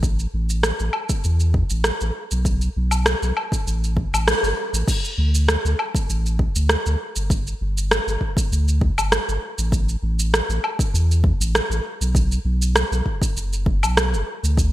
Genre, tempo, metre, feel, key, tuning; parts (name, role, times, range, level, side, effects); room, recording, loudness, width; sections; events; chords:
sunset chillout; 99 BPM; 4/4; straight; A4 = 440 Hz
warm sub bass; bass; 0.0-14.7 s; F#1 to E2; -20 LUFS; equal
deep house drum kit; drums; 0.0-14.7 s; crash cymbal, rim click, shaker, woodblock; -22 LUFS; equal; gated reverb
electronic kick drum; drums; 0.0-14.7 s; -22 LUFS; equal
light reverb; bright 1980s-style digital production; -18 LUFS; side -15 dB against mid
0.0-4.9 A section; 4.9-14.7 B section
band accent 4.3-4.6